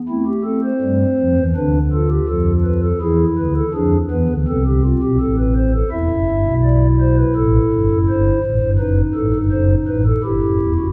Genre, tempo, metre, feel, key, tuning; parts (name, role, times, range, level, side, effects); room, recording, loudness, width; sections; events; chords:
classical, baroque-style 3-part fugue for pipe organ; 83 BPM; 4/4; straight; A minor; A4 = 440 Hz
pipe organ, stopped flute; solo; 0.1-10.9 s; E1 to E5; -17 LUFS; equal
wet concert hall reverb, RT60 1.9 s; dark, warm production, vinyl crackle; -17 LUFS; mono
0.1-10.9 A section
0.1 Am; 1.6 Bm7b5/D; 3.0 E7; 4.5 Am; 5.9 Em; 7.4 F#m7b5; 8.8 B7/F#; 10.2 Em